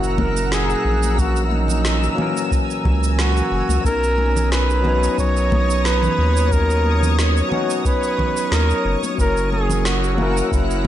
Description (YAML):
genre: sunset chillout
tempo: 90 BPM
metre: 4/4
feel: swing 53% on 16ths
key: B major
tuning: A4 = 440 Hz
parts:
  - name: warm flugelhorn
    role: melody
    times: 0.0-10.9 s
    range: D#4 to C#5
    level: -23 LUFS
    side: equal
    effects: ping-pong delay
  - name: overdriven tine electric piano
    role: accompaniment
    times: 0.0-10.9 s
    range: A#2 to C#5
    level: -24 LUFS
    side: moving between left 5 dB and right 5 dB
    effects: auto-pan, ping-pong delay
  - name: shimmering ambient pad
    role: sustained chords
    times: 0.0-10.9 s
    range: A#4 to E6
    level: -26 LUFS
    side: equal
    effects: chorus, built-in reverb
  - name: round analog bass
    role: bass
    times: 0.0-10.9 s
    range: F#1 to D#2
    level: -19 LUFS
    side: equal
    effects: none
  - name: electronic shaker, snare drum and congas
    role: drums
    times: 0.0-10.8 s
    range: none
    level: -27 LUFS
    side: right 1 dB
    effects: none
  - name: electronic kick drum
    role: drums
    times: 0.2-10.7 s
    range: none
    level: -22 LUFS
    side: equal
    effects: overdrive
  - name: congas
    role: percussion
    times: 0.2-10.9 s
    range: none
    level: -28 LUFS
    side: left 2 dB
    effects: none
room: digital ambience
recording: nothing above 10.7 kHz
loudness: -16 LUFS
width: side -12 dB against mid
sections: 0.0-10.9 A section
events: none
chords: 0.0 F#7; 3.9 Bmaj9; 9.2 F#7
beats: 0.52 | 1.19 1.85 2.52 3.19 | 3.85 4.52 5.19 5.85 | 6.52 7.19 7.85 8.52 | 9.19 9.85 10.52